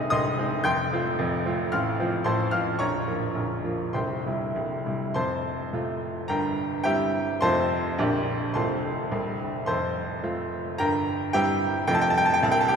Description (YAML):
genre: classical, virtuoso piano study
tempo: 96-114 BPM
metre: 2/4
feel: rubato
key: F major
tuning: A4 = 440 Hz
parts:
  - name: clear baby grand piano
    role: solo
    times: 0.0-12.8 s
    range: Bb0 to G6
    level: -23 LUFS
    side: equal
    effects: none
room: wet cathedral reverb, RT60 5.1 s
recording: recorded in a church or concert hall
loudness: -24 LUFS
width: side -6 dB against mid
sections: 0.0-5.2 A section; 5.2-12.8 B section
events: none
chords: 0.0 Ab/C; 0.6 F; 1.7 F/A; 2.8 Bbm; 3.9 C; 5.2 F; 6.3 C7/G; 7.4 F; 8.0 Gm/Bb; 8.5 F/C; 9.1 C; 9.7 F; 10.8 C7/G; 11.9 F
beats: 0.10 | 0.63 1.17 | 1.71 2.24 | 2.79 3.35 | 3.94 4.56 | 5.16 5.73 | 6.29 6.84 | 7.42 7.98 | 8.54 9.11 | 9.68 10.24 | 10.79 11.34 | 11.87 12.43